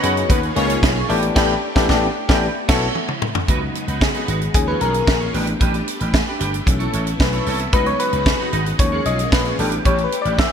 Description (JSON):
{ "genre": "early-eighties boogie funk", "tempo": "113 BPM", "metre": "4/4", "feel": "straight", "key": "unclear", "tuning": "A4 = 442 Hz", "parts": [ { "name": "FM electric piano", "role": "accompaniment", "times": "0.0-10.5 s", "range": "E3 to E5", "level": "-22 LUFS", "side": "left 4 dB", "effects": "chorus" }, { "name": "string machine, violins", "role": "sustained chords", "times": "0.0-10.5 s", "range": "C#3 to G#4", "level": "-29 LUFS", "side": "equal", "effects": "ensemble chorus" }, { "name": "clean electric guitar", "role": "riff", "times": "0.0-10.4 s", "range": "D4 to C#5", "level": "-26 LUFS", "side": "right 4 dB", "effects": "analog chorus" }, { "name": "vintage slap bass", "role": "bass", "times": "0.0-10.4 s", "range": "G1 to F#2", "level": "-23 LUFS", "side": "equal", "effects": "none" }, { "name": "tight funk drum kit", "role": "drums", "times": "0.0-10.5 s", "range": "crash cymbal, hi-hat, kick drum, snare drum, toms", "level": "-19 LUFS", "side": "right 1 dB", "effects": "none" }, { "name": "analog synth brass", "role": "second line", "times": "0.3-0.8 s", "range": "B3 to C#5", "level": "-26 LUFS", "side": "left 2 dB", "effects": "chorus, digital delay" } ], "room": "moderate lush hall reverb, RT60 1.6 s, small room ambience", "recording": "bright 1980s-style digital production", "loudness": "-16 LUFS", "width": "side -7 dB against mid", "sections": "0.0-3.5 A section; 3.5-10.5 B section", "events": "band accent 1.4-3.5; drum fill 3.0-3.5; FM electric piano solo 3.5-10.5", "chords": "0.3 D#9sus4; 1.1 A9sus4; 2.4 B9sus4; 3.5 C#9sus4; 4.5 D#9sus4; 5.3 A9sus4; 6.7 B9sus4; 7.7 C#9sus4; 8.8 D#9sus4; 9.6 A9sus4" }